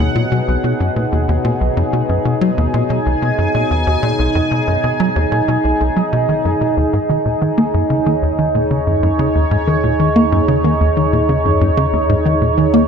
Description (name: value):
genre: ambient, sequencer-driven space music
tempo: 93 BPM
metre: 4/4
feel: straight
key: Eb minor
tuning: A4 = 444 Hz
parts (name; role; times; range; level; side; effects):
- sweeping resonant pad; sustained chords; 0.0-12.9 s; B2 to Ab5; -16 LUFS; right 1 dB; chorus
- tight sequencer bass; riff; 0.0-12.8 s; B1 to Bb3; -16 LUFS; equal; analog chorus, ping-pong delay
- warm sub bass; bass; 6.8-12.9 s; Eb2; -23 LUFS; equal; none
room: wet plate reverb, RT60 2.5 s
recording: echo-heavy mix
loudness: -13 LUFS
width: side -6 dB against mid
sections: 0.0-6.8 A section; 6.8-12.9 B section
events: none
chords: 0.0 B; 6.8 Eb7(no3)